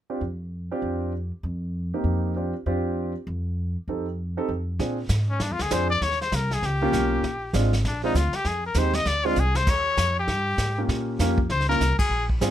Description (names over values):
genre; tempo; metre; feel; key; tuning
jazz, small-group swing and bop; 197 BPM; 4/4; swing 61% on 8ths; unclear; A4 = 440 Hz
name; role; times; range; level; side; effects
warm concert grand piano; accompaniment; 0.1-12.5 s; Ab3 to Bb4; -26 LUFS; right 2 dB; none
upright bass; bass; 0.2-12.5 s; G1 to Bb2; -26 LUFS; equal; none
vintage brush drum kit; drums; 4.8-12.5 s; brushed snare drum, crash cymbal, hi-hat, kick drum, ride cymbal, snare drum; -29 LUFS; equal; none
bright trumpet; melody; 5.3-12.3 s; Db4 to Eb5; -25 LUFS; left 3 dB; none
room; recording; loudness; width
little or no reverb; close, detailed microphones; -22 LUFS; side -11 dB against mid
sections
0.0-4.8 A section; 4.8-12.5 B section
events
drum fill 9.4-9.7; band accent 12.0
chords
0.0 Fsus2; 1.1 F7sus4; 2.4 Fsus2; 3.6 F9; 4.8 Bb9; 6.0 Eb9; 7.2 Bb9; 8.4 Fm7; 9.1 Fm6; 9.7 Eb9